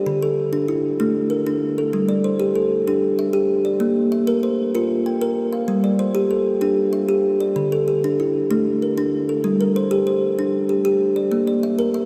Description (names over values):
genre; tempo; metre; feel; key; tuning
southern african traditional; 128 BPM (dotted quarters); 12/8; straight; G dorian; A4 = 442 Hz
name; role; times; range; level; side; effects
kalimba; solo; 0.0-12.1 s; D3 to G5; -20 LUFS; equal; none
room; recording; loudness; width
wet cathedral reverb, RT60 6.8 s; in a vast, echoing space; -20 LUFS; mono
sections
0.0-9.4 A section; 9.4-12.1 B section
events
none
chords
0.1 D5; 1.9 G5; 3.8 Bb5; 5.7 G5; 7.6 D5; 9.4 Gm; 11.3 Bb